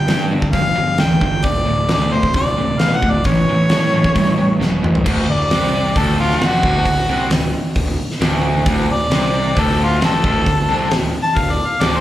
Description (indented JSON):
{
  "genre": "blues rock power trio and southern rock",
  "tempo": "133 BPM",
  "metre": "4/4",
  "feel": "straight",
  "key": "unclear",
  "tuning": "A4 = 440 Hz",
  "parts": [
    { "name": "clear harmonica", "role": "melody", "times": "0.0-12.0 s", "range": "F4 to A5", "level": "-19 LUFS", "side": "left 1 dB", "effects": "overdrive, slapback echo" },
    { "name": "overdriven electric guitar", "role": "riff", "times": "0.0-12.0 s", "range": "D2 to G3", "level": "-19 LUFS", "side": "equal", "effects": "spring reverb, slapback echo" },
    { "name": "fuzz picked electric bass", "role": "bass", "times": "0.0-12.0 s", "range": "D1 to A2", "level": "-21 LUFS", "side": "equal", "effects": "overdrive" },
    { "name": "huge arena drum kit", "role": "drums", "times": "0.1-11.9 s", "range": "crash cymbal, hi-hat, kick drum, snare drum, toms", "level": "-20 LUFS", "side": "equal", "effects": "none" }
  ],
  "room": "light reverb",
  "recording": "live gig heard through the venue's PA, club ambience",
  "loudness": "-14 LUFS",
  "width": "side -13 dB against mid",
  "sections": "0.0-5.1 A section; 5.1-12.0 B section",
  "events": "drum fill 4.6-5.1; harmonica solo 5.1-12.0",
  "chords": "0.0 G5; 1.4 D5; 3.2 A; 5.1 D5"
}